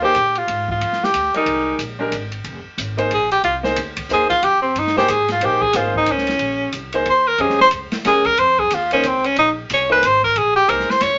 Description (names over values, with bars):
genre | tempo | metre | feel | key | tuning
modal jazz | 182 BPM | 3/4 | swing 61% on 8ths | F dorian, Bb dorian from 5.4 s | A4 = 441 Hz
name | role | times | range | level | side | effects
clear tenor saxophone | melody | 0.0-11.2 s | C4 to Db5 | -18 LUFS | equal | none
bright grand piano | accompaniment | 0.0-10.9 s | Ab3 to Eb5 | -24 LUFS | equal | none
upright bass | bass | 0.0-11.2 s | F1 to Bb2 | -34 LUFS | equal | none
open jazz drum kit | drums | 0.1-11.1 s | hi-hat, kick drum, ride cymbal, snare drum | -31 LUFS | equal | none
room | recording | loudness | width
wet small room reverb, RT60 0.5 s | nothing above 7.6 kHz | -18 LUFS | mono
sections
0.0-5.4 A section; 5.4-11.2 A section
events
tenor saxophone solo 0.0-11.2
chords
0.0 Fm11; 5.4 Bbm11